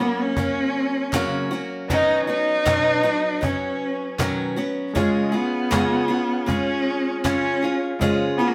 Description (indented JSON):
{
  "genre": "acoustic pop",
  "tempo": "78 BPM",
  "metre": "4/4",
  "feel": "swing 55% on 16ths",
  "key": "Db mixolydian",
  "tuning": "A4 = 440 Hz",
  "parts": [
    { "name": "warm cello", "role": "melody", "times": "0.0-8.5 s", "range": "Ab3 to Eb4", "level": "-24 LUFS", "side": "equal", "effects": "none" },
    { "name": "clear grand piano", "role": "accompaniment", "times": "0.0-8.5 s", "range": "Ab3 to Db5", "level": "-38 LUFS", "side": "equal", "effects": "none" },
    { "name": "picked steel-string acoustic guitar", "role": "accompaniment", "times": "0.0-8.5 s", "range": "Gb2 to Ab4", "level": "-27 LUFS", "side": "equal", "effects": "none" },
    { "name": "cajon", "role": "drums", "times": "0.4-8.2 s", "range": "none", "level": "-30 LUFS", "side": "equal", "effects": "none" },
    { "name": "group handclap", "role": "percussion", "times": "1.1-7.4 s", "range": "none", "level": "-37 LUFS", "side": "equal", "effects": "none" }
  ],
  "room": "moderate studio reverb, RT60 0.8 s",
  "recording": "band playing live in one room",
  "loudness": "-22 LUFS",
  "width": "mono",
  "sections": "0.0-8.5 A section",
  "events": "none",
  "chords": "0.0 Gb; 1.9 Cbadd9; 5.0 Db"
}